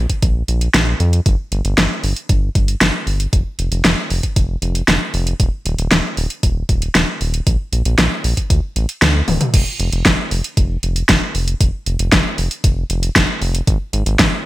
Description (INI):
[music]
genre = synthwave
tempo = 116 BPM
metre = 4/4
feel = straight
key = unclear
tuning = A4 = 439 Hz
[part]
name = round analog bass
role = bass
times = 0.0-14.3 s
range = D1 to F2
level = -18 LUFS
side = equal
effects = none
[part]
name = electronic kick drum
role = drums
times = 0.1-14.3 s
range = none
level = -16 LUFS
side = equal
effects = overdrive
[part]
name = pop drum kit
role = drums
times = 0.1-14.3 s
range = crash cymbal, hi-hat, snare drum, toms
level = -16 LUFS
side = equal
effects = overdrive, gated reverb
[sound]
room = light reverb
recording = bright 1980s-style digital production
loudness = -14 LUFS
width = side -16 dB against mid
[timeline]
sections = 0.0-9.5 A section; 9.5-14.5 B section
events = drum fill 9.3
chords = none